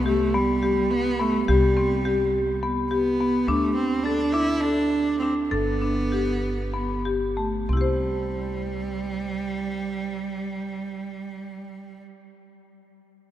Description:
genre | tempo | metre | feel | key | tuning
contemporary instrumental, chamber music in an uneven meter | 182-211 BPM (eighths) | 7/8 | straight | C major | A4 = 440 Hz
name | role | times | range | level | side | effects
rich cello | melody | 0.0-12.0 s | G3 to E4 | -27 LUFS | right 3 dB | none
upright bass | bass | 0.0-12.0 s | G1 to D2 | -29 LUFS | equal | none
marimba with hard mallets | arpeggios | 0.1-12.1 s | A3 to C5 | -24 LUFS | left 2 dB | none
room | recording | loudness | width
wet cathedral reverb, RT60 5.3 s | in a vast, echoing space | -22 LUFS | side -12 dB against mid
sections
0.0-7.7 A section; 7.7-12.3 B section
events
slowing down 3.5-7.7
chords
0.0 C5; 3.5 D5; 5.5 Gadd9; 7.7 C

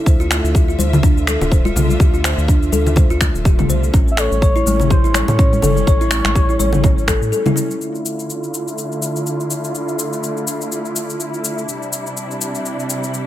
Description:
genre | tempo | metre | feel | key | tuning
afro house | 124 BPM | 4/4 | swing 57% on 16ths | D minor | A4 = 440 Hz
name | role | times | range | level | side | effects
rich studio string section | sustained chords | 0.0-13.3 s | C3 to E5 | -24 LUFS | right 1 dB | sidechain pumping, low-pass filter
kalimba | arpeggios | 0.1-7.7 s | A3 to C#5 | -22 LUFS | left 1 dB | sidechain pumping, ping-pong delay
round analog bass | bass | 0.1-7.3 s | D1 to A2 | -19 LUFS | equal | sidechain pumping
afro-pop drum kit | drums | 0.1-13.2 s | cabasa, finger snaps, toms | -21 LUFS | left 1 dB | none
electronic kick drum | drums | 0.1-7.2 s | none | -14 LUFS | equal | none
congas | percussion | 0.8-7.5 s | none | -23 LUFS | left 2 dB | none
expressive portamento lead | melody | 4.1-7.3 s | C5 to E5 | -22 LUFS | equal | chorus, ping-pong delay
room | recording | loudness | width
digital ambience | none | -14 LUFS | side -13 dB against mid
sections
0.0-7.8 A section; 7.8-13.3 B section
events
break 7.3-7.8; filter sweep on string section 7.8-13.3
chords
0.1 Dm7; 3.9 A7; 7.8 Dm; 11.7 C

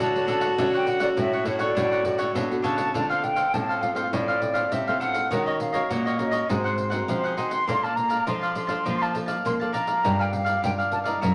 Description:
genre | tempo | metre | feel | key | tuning
samba and choro | 102 BPM | 4/4 | straight | D minor | A4 = 440 Hz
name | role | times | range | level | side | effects
concert flute | melody | 0.0-11.3 s | B#4 to C6 | -29 LUFS | equal | none
breathy tenor saxophone | second line | 0.0-2.9 s | D4 to F#4 | -30 LUFS | equal | none
cavaquinho | accompaniment | 0.0-11.3 s | D4 to A5 | -31 LUFS | equal | none
nylon-string guitar | accompaniment | 0.0-11.3 s | A2 to Eb5 | -34 LUFS | equal | none
nylon-string guitar | bass | 0.0-11.3 s | F#2 to Bb3 | -32 LUFS | equal | none
pandeiro | percussion | 0.0-11.3 s | none | -36 LUFS | equal | none
room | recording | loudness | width
wet studio reverb, RT60 0.9 s | none | -25 LUFS | mono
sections
0.0-2.9 A section; 2.9-11.3 B section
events
none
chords
0.0 Dmaj7; 2.9 Dm7; 5.3 Ebm7; 6.5 G#9; 7.7 Bbmaj9; 10.0 Gm7

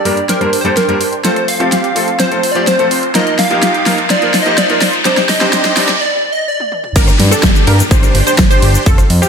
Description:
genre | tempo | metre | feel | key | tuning
EDM, festival progressive house | 126 BPM | 4/4 | straight | G minor | A4 = 442 Hz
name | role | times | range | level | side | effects
plucky unison lead | melody | 0.0-6.8 s | Bb4 to F5 | -16 LUFS | equal | digital delay
bright baby grand piano | accompaniment | 0.0-5.9 s | G2 to C5 | -19 LUFS | left 1 dB | sidechain pumping, digital delay
supersaw chords | riff | 0.0-9.3 s | C4 to D5 | -18 LUFS | equal | sidechain pumping, low-pass filter, digital delay
riser and downlifter | sound effects | 1.5-9.3 s | none | -20 LUFS | left 1 dB | none
big-room dance drum kit | drums | 0.1-9.3 s | crash cymbal, hi-hat, ride cymbal, rim click, shaker, snare drum, toms | -16 LUFS | equal | overdrive
wide unison pluck | arpeggios | 7.0-9.3 s | G4 to C5 | -18 LUFS | right 2 dB | sidechain pumping, digital delay
fat analog bass | bass | 7.0-9.2 s | F1 to G2 | -13 LUFS | equal | sidechain pumping
electronic kick drum | drums | 7.0-9.0 s | none | -11 LUFS | equal | overdrive
room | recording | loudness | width
moderate digital room reverb, RT60 1.2 s | high-pass filter | -10 LUFS | side -6 dB against mid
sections
0.0-7.0 A section; 7.0-9.3 B section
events
build-up 0.0-7.0; drum fill 0.0-6.0, 6.6-7.0; filter sweep on supersaw synth 0.0-7.0; riser 1.5-6.0; break 6.0-7.0; drop 7.0-9.3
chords
0.0 Gm; 1.2 F; 3.1 Ebsus2; 5.1 Cmadd9; 7.0 Gm

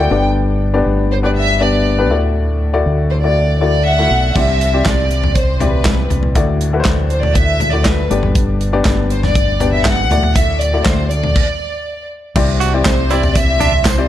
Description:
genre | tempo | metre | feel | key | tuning
piano-driven pop | 120 BPM | 4/4 | straight | unclear | A4 = 443 Hz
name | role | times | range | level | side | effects
warm studio violin section | melody | 0.0-14.1 s | B4 to G5 | -19 LUFS | right 1 dB | none
clear upright piano | accompaniment | 0.0-14.1 s | G2 to E5 | -19 LUFS | left 5 dB | none
fingered electric bass | bass | 0.0-14.1 s | G1 to D2 | -16 LUFS | equal | none
modern studio drum kit | drums | 4.4-14.0 s | crash cymbal, handclaps, hi-hat, kick drum, snare drum, toms | -16 LUFS | equal | none
tambourine | percussion | 12.4-14.0 s | none | -34 LUFS | right 10 dB | none
direct-recorded clean electric guitar | riff | 12.6-13.7 s | D4 to F#4 | -20 LUFS | right 8 dB | none
room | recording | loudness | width
small room ambience | dark, warm production | -12 LUFS | side -12 dB against mid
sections
0.0-4.4 A section; 4.4-12.4 B section; 12.4-14.1 C section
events
stop 11.4-12.4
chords
0.1 G; 2.1 Dadd9; 4.4 Cadd9; 6.4 Dadd9; 8.1 G; 10.1 Dadd9; 12.4 Cadd9

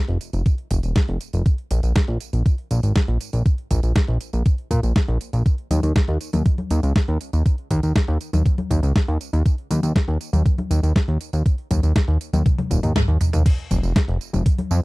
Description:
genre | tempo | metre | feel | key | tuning
italo disco | 120 BPM | 4/4 | straight | unclear | A4 = 440 Hz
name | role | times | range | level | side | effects
fat analog bass | bass | 0.1-14.8 s | Eb1 to Bb2 | -20 LUFS | equal | none
clean 12-bit digital drum machine | drums | 0.1-14.8 s | congas, crash cymbal, hi-hat, snare drum, tambourine, toms | -25 LUFS | left 1 dB | overdrive
electronic kick drum | drums | 0.5-14.6 s | none | -18 LUFS | equal | overdrive
room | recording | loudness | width
little or no reverb | dry, close 1970s-style studio recording | -18 LUFS | side -23 dB against mid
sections
0.0-13.5 A section; 13.5-14.8 B section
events
drum fill 12.5-13.5; band accent 13.0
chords
none

